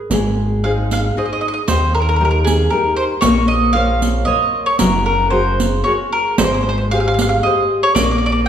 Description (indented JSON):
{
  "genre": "italian folk, Italian serenade",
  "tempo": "114 BPM",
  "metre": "3/4",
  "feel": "rubato",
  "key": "Ab major",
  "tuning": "A4 = 440 Hz",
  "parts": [
    { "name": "nylon-string guitar", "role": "accompaniment", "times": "0.1-8.5 s", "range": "Eb3 to Db5", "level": "-20 LUFS", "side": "left 2 dB", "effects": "none" },
    { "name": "gritty driven synth bass", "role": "bass", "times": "0.1-8.5 s", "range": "Gb1 to Eb2", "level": "-19 LUFS", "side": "equal", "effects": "none" },
    { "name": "riq", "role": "percussion", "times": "0.1-8.2 s", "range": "none", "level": "-22 LUFS", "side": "right 4 dB", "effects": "none" },
    { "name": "mandolin", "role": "melody", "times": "0.6-8.5 s", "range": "Ab4 to F5", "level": "-17 LUFS", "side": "right 1 dB", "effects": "none" }
  ],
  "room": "wet recital hall reverb, RT60 1.5 s",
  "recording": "heard from further back in the room",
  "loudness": "-13 LUFS",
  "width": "side -9 dB against mid",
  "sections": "0.1-8.5 A section",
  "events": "none",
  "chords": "0.1 Ab; 1.7 Eb; 3.2 Bbmadd9; 4.8 Gbadd9; 6.4 Abmaj7; 8.0 Bb"
}